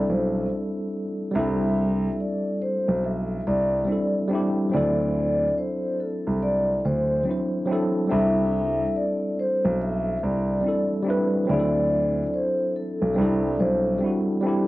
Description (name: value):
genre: lo-fi hip hop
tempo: 71 BPM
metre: 4/4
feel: swing 62% on 16ths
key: C lydian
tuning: A4 = 440 Hz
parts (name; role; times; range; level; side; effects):
- vibraphone with soft mallets; melody; 0.0-14.0 s; A4 to E5; -26 LUFS; left 1 dB; low-pass filter, cassette tape
- tine electric piano; accompaniment; 0.0-14.7 s; F#3 to C5; -25 LUFS; equal; overdrive, fast stereo tremolo, cassette tape, low-pass filter
- dark grand piano; bass; 0.0-14.0 s; B1 to D2; -26 LUFS; right 1 dB; none
room: wet booth ambience, RT60 0.2 s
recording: home recording on cassette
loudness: -21 LUFS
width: side -17 dB against mid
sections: 0.0-1.3 A section; 1.3-14.7 B section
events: none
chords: 0.0 C6; 4.7 D7; 8.1 C6; 11.5 D7; 13.2 C6